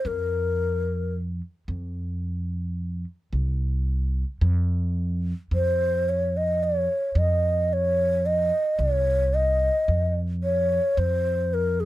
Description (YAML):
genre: Arabic maqam ensemble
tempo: 110 BPM (eighths)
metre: 10/8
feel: straight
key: F maqam bayati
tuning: A4 = 440 Hz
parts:
  - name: breathy mellow low ney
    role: melody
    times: 0.0-11.9 s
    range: Ab4 to Eb5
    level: -23 LUFS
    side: equal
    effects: none
  - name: upright bass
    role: bass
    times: 0.0-11.9 s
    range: C2 to F2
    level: -25 LUFS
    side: equal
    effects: none
room: little or no reverb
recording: close, detailed microphones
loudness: -22 LUFS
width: side -15 dB against mid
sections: 0.0-11.9 A section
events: none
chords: none